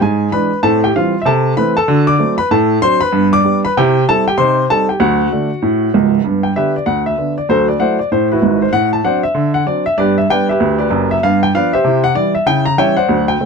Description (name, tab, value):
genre	jazz, stride piano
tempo	193 BPM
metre	4/4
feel	swing 62% on 8ths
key	G major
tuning	A4 = 440 Hz
part	warm upright piano	solo	0.0-13.5 s	C#1 to D6	-12 LUFS	equal	none
room	light reverb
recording	dark, warm production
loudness	-12 LUFS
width	side -5 dB against mid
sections	0.0-6.2 A section; 6.2-13.5 B section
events	none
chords	0.0 E7/G#; 0.6 Am7; 1.3 Am/C; 1.9 D7; 2.5 D7/A; 3.1 G; 3.7 C; 4.4 Cm; 5.0 D; 6.2 G; 7.5 D9; 8.7 D7/A; 10.0 G; 11.2 G7; 11.8 C; 12.5 C#dim